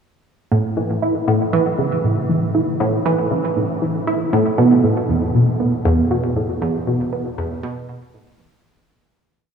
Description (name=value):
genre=ambient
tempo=118 BPM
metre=4/4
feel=straight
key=unclear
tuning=A4 = 440 Hz
part: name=tight sequenced synth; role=solo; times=0.5-8.5 s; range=E2 to E4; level=-16 LUFS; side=right 1 dB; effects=chorus, analog delay
room=wet cathedral reverb, RT60 6.3 s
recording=in a vast, echoing space, small room ambience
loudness=-16 LUFS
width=side -6 dB against mid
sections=0.5-8.7 A section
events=fade-out 5.9-8.7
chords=none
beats=| 0.52 1.02 1.53 2.04 | 2.55 3.06 3.57 4.08 | 4.58 5.09 5.60 6.11 | 6.62 7.13 7.63 8.14